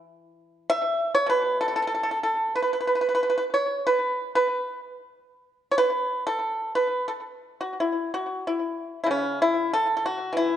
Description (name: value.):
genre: chinese traditional, Chinese solo plucked strings.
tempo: 94 BPM.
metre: 2/4.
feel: rubato.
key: unclear.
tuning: A4 = 445 Hz.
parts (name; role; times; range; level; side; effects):
pipa; solo; 0.0-10.6 s; B2 to E5; -23 LUFS; equal; slapback echo.
room: moderate recital hall reverb, RT60 1.7 s.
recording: dark, warm production, nothing above 10.5 kHz.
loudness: -23 LUFS.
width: side -10 dB against mid.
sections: 0.0-7.8 A section; 7.8-10.6 B section.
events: none.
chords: none.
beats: | 0.04 0.67 | 1.29 1.92 | 2.58 3.23 | 3.86 4.50 | 5.13 5.77 | 6.42 7.07 | 7.76 8.45 | 9.09 9.72 | 10.34.